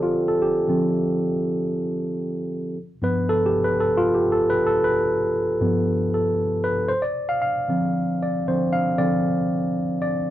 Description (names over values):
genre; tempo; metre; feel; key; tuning
disco; 116 BPM; 4/4; straight; D dorian; A4 = 441 Hz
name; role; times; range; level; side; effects
mellow tine electric piano; solo; 0.0-10.3 s; G2 to F5; -20 LUFS; equal; none
room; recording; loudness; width
moderate small room reverb, RT60 0.5 s; band playing live in one room; -20 LUFS; side -13 dB against mid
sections
0.0-10.3 A section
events
tine electric piano solo 0.0-10.3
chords
0.0 Dm7; 2.8 G9; 6.9 Dm7